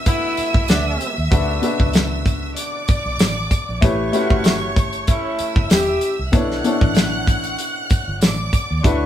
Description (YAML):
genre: lush 1970s-style soul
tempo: 96 BPM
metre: 4/4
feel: swing 54% on 16ths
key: D major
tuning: A4 = 440 Hz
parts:
  - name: rich studio violin section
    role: second line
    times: 0.0-9.1 s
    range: C#5 to F#6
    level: -25 LUFS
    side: right 1 dB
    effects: none
  - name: warm grand piano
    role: accompaniment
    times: 0.0-9.1 s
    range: B2 to E5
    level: -24 LUFS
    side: left 2 dB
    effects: none
  - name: warm horn section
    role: stabs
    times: 0.1-6.2 s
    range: A3 to G4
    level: -22 LUFS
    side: equal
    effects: none
  - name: damped 70s drum kit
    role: drums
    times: 0.1-9.0 s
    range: hi-hat, kick drum, snare drum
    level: -17 LUFS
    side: equal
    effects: none
  - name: tambourine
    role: percussion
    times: 0.1-8.7 s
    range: none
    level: -36 LUFS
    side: right 7 dB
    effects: none
  - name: vintage muted fingered electric bass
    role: bass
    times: 0.4-9.1 s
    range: E1 to Eb2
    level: -25 LUFS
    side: right 1 dB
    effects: none
room: moderate small room reverb, RT60 0.5 s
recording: band playing live in one room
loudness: -16 LUFS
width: side -11 dB against mid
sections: 0.0-9.1 A section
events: none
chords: 0.0 D6; 3.8 A7; 6.3 Bm11